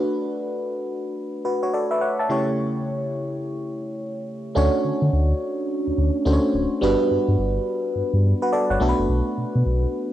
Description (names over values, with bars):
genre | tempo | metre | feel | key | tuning
R&B, new jack swing | 106 BPM | 4/4 | swing 63% on 16ths | D major | A4 = 440 Hz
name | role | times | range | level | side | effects
FM electric piano | accompaniment | 0.0-10.1 s | C#3 to A5 | -22 LUFS | equal | chorus, phaser, cassette tape
sub bass with octave | bass | 4.6-9.9 s | D1 to D3 | -21 LUFS | equal | none
room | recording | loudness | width
light reverb | home recording on cassette | -20 LUFS | side -12 dB against mid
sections
0.0-4.6 A section; 4.6-10.1 B section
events
none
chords
0.0 Bm7; 2.3 A7/C#; 4.6 Dmaj7; 6.8 Gmaj7; 8.8 Bm7